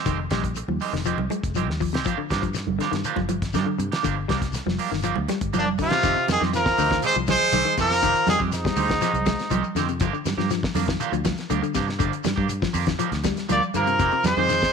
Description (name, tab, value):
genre	afrobeat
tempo	121 BPM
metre	4/4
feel	straight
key	F dorian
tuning	A4 = 440 Hz
part	electric guitar at the edge of break-up	stabs	0.0-14.5 s	Eb3 to G4	-30 LUFS	right 12 dB	wide subtle chorus
part	semi-hollow electric guitar	arpeggios	0.1-14.7 s	C3 to Ab3	-29 LUFS	left 14 dB	none
part	fingered electric bass	bass	0.1-14.7 s	F1 to G2	-28 LUFS	equal	none
part	damped 70s drum kit	drums	0.1-14.7 s	hi-hat, kick drum, snare drum	-29 LUFS	equal	none
part	congas	percussion	0.1-14.6 s	none	-30 LUFS	right 12 dB	none
part	shekere	percussion	0.1-14.7 s	none	-35 LUFS	left 10 dB	none
part	brilliant trumpet	melody	5.6-9.7, 13.5-14.7 s	D4 to D5	-21 LUFS	left 1 dB	none
part	raspy tenor saxophone	second line	5.6-9.7, 13.5-14.7 s	Ab2 to Bb3	-29 LUFS	right 13 dB	none
room	light reverb, studio ambience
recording	1960s-style stereo with parts hard left and right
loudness	-21 LUFS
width	side -6 dB against mid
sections	0.0-6.0 A section; 6.0-14.7 B section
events	drum fill 5.7-6.0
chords	0.0 Fm9; 2.1 Gm7; 6.0 Fm9; 10.0 Gm7; 14.0 Fm9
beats	| 0.06 0.56 1.06 1.56 | 2.05 2.55 3.05 3.55 | 4.04 4.54 5.04 5.54 | 6.03 6.53 7.03 7.52 | 8.02 8.52 9.02 9.51 | 10.01 10.51 11.01 11.51 | 12.00 12.50 13.00 13.50 | 14.00 14.49